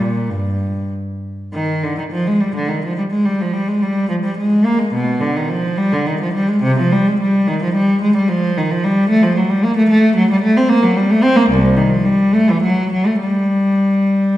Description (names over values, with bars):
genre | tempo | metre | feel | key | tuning
classical, baroque-style suite movement for unaccompanied cello | 92-114 BPM | 3/4 | rubato | G minor from 8.3 s | A4 = 442 Hz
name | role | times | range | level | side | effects
rich cello | solo | 0.0-14.4 s | C2 to C4 | -13 LUFS | equal | none
room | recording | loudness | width
wet recital hall reverb, RT60 1.7 s | recorded in a church or concert hall, nothing above 10.9 kHz | -13 LUFS | side -14 dB against mid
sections
0.0-1.5 A section; 1.5-14.4 A section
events
none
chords
none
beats
0.30 0.91 | 1.54 2.11 2.67 | 3.23 3.79 4.36 | 4.93 5.49 6.04 | 6.62 7.19 7.73 | 8.28 8.82 9.35 | 9.88 10.42 10.97 | 11.51 12.05 12.62 | 13.21 13.81